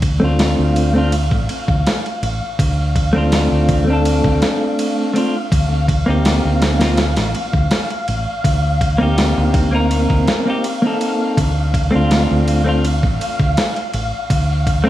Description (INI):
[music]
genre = trip hop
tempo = 82 BPM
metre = 4/4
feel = straight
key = D phrygian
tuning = A4 = 439 Hz
[part]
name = deep dub fingered electric bass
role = bass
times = 0.0-14.9 s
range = A1 to D2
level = -17 LUFS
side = equal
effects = tube saturation
[part]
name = dusty soul sampler-style drum kit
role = drums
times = 0.0-14.8 s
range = kick drum, ride cymbal, snare drum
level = -20 LUFS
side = equal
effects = none
[part]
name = flickering grainy texture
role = texture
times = 0.1-14.9 s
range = F5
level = -26 LUFS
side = left 1 dB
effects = built-in reverb
[part]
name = clean electric guitar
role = accompaniment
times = 0.2-14.9 s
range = A3 to Bb4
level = -18 LUFS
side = equal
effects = harmonic tremolo, low-pass filter, tape echo
[sound]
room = light reverb, digital ambience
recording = vinyl crackle, studio reverb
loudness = -14 LUFS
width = side -14 dB against mid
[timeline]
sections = 0.0-14.9 A section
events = none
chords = 0.0 Dm7; 5.5 Cm7; 11.4 Dm7